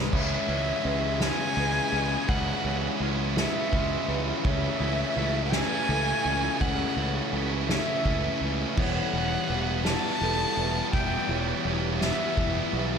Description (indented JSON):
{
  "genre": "post-rock",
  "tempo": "56 BPM (dotted quarters)",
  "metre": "6/8",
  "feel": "straight",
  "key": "unclear",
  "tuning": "A4 = 440 Hz",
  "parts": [
    { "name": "warbly tape-like pad", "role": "sustained chords", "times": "0.3-13.0 s", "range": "C#4 to B4", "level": "-41 LUFS", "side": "equal", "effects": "none" },
    { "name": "electric guitar at the edge of break-up", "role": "arpeggios", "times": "0.0-8.8 s", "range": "C#3 to G#4", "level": "-38 LUFS", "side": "left 2 dB", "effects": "slapback echo, analog delay" },
    { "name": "vibraphone with soft mallets", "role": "arpeggios", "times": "0.0-13.0 s", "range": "G#4 to E5", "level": "-40 LUFS", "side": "right 6 dB", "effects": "slapback echo, analog delay" },
    { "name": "thick fuzz guitar", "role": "riff", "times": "0.0-13.0 s", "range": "G#2 to E4", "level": "-32 LUFS", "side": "left 12 dB", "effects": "distortion" },
    { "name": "tight distorted guitar", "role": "riff", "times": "0.0-13.0 s", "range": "G#2 to E4", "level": "-32 LUFS", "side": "right 13 dB", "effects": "distortion, slapback echo" },
    { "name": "growling fingered electric bass", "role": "bass", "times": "0.0-13.0 s", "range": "E1 to C#2", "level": "-31 LUFS", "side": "right 1 dB", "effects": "overdrive" },
    { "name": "dark violin", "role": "melody", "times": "0.1-12.8 s", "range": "E5 to A5", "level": "-30 LUFS", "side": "left 1 dB", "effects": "slapback echo, analog delay" },
    { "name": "soft-mallet drum kit", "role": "drums", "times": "0.1-12.9 s", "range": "crash cymbal, kick drum, ride cymbal, snare drum", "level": "-31 LUFS", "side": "right 1 dB", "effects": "none" }
  ],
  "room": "moderate lush hall reverb, RT60 1.8 s, studio ambience",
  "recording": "big arena sound",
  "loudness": "-24 LUFS",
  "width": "side -6 dB against mid",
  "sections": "0.1-13.0 A section",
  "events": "none",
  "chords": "0.1 C#m7; 4.4 A/C#; 8.8 Emadd9"
}